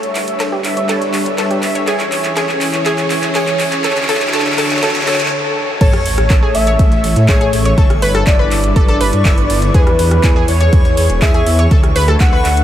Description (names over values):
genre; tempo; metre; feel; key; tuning
progressive house; 122 BPM; 4/4; straight; A major; A4 = 440 Hz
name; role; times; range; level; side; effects
expressive synth lead; melody; 0.0-12.6 s; B4 to F#5; -20 LUFS; equal; analog chorus, tape echo
supersaw pad; sustained chords; 0.0-12.6 s; D3 to F#5; -21 LUFS; equal; sidechain pumping
breakbeat sampler-style drum kit; drums; 0.0-12.6 s; hi-hat, ride cymbal, snare drum; -33 LUFS; right 1 dB; none
pop drum kit; drums; 0.0-12.6 s; crash cymbal, handclaps, hi-hat, rim click; -21 LUFS; equal; overdrive, high-pass filter on snare, sidechain pumping on hats, high-pass filter on hats, sidechain pumping on cymbals, high-pass filter on cymbals, high-pass filter on room
riser, noise sweep and sub drop; sound effects; 0.6-7.8 s; none; -28 LUFS; equal; none
analog pluck; arpeggios; 0.4-12.4 s; G4 to E5; -20 LUFS; equal; chorus, sidechain pumping, diffuse ambient delay
soft synth bell; second line; 5.8-12.6 s; B4 to F#5; -22 LUFS; left 2 dB; chorus, sidechain pumping, diffuse ambient delay
dark detuned saw bass; bass; 5.8-12.6 s; E1 to A2; -15 LUFS; equal; sidechain pumping
electronic kick drum; drums; 5.8-12.3 s; none; -12 LUFS; equal; none
backwards swelling texture; texture; 7.6-12.6 s; C#6; -32 LUFS; right 2 dB; built-in reverb, sidechain pumping
room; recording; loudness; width
moderate huge ambient reverb, RT60 9.7 s; dreamy mix soaked in reverb; -11 LUFS; side -11 dB against mid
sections
0.0-5.8 A section; 5.8-12.6 B section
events
build-up 0.0-5.8; drum fill 0.0-5.3; filter sweep on synth pluck 0.0-5.8; filter sweep on analog synth lead 0.0-5.8; riser 0.6-5.3; noise sweep 3.8-5.8; stop 5.3-5.8; drop 5.8-12.6; impact 5.8-7.8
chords
0.0 G6; 1.9 E6; 3.8 Dadd9; 5.8 A; 7.8 G6; 9.7 E6; 11.7 Dadd9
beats
0.40 0.89 1.38 | 1.88 2.37 2.86 3.35 | 3.84 4.33 4.83 5.32 | 5.81 6.30 6.79 7.29 | 7.78 8.27 8.76 9.25 | 9.74 10.24 10.73 11.22 | 11.71 12.20